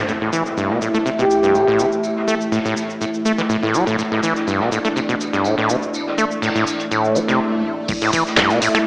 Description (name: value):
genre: acid house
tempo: 123 BPM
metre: 4/4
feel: straight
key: unclear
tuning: A4 = 439 Hz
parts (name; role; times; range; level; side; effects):
- dark analog pad; sustained chords; 0.0-8.9 s; A3 to E5; -23 LUFS; equal; chorus, sidechain pumping, cassette tape
- acid bass, saw; riff; 0.0-8.8 s; G2 to A3; -19 LUFS; equal; cassette tape, analog delay
- punchy analog drum machine; drums; 0.1-8.8 s; crash cymbal, finger snaps, handclaps, hi-hat, shaker; -24 LUFS; equal; overdrive
- vintage drum kit; drums; 0.1-8.9 s; hi-hat, snare drum, tambourine; -29 LUFS; equal; sidechain pumping on hats, high-pass filter on hats, low-pass filter on hats, high-pass filter on snare, low-pass filter on snare, sidechain pumping on perc, high-pass filter on perc, low-pass filter on perc, high-pass filter on room, low-pass filter on room
- impact and swell; sound effects; 0.1-2.0, 7.1-7.9 s; none; -26 LUFS; equal; none
- breathy flute-like synth lead; melody; 1.2-1.9 s; G4; -18 LUFS; equal; ensemble chorus, cassette tape, analog delay
- electronic kick drum; drums; 7.9-8.5 s; none; -28 LUFS; equal; none
room: wet lush hall reverb, RT60 1.6 s, digital ambience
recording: home recording on cassette, small speaker sound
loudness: -16 LUFS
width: side -27 dB against mid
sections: 0.1-7.9 A section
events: impact 0.1-2.0; swell 7.1-7.9; break 7.4-7.9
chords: 0.1 A5